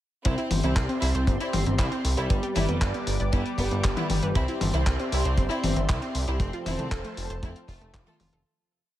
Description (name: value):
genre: italo disco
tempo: 117 BPM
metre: 4/4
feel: straight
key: C major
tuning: A4 = 439 Hz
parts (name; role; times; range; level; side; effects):
- clean 12-bit digital drum machine; drums; 0.2-8.4 s; handclaps, hi-hat, toms; -31 LUFS; left 2 dB; gated reverb
- clear studio violin section; melody; 0.3-8.4 s; G3 to A4; -33 LUFS; equal; digital delay
- lush unison pad; sustained chords; 0.3-8.4 s; F3 to D6; -33 LUFS; equal; chorus, phaser
- analog pluck; arpeggios; 0.3-8.4 s; A3 to G5; -35 LUFS; right 2 dB; chorus, digital delay
- chorused synth bass; bass; 0.3-8.4 s; F1 to C2; -27 LUFS; equal; tube saturation
- kick drum; drums; 0.3-8.0 s; none; -26 LUFS; equal; none
room: light reverb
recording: none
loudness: -23 LUFS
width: side -13 dB against mid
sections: 0.3-8.5 chorus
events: fade-out 5.7-8.5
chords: 0.3 Cadd9; 2.3 G; 4.4 Cadd9; 6.4 F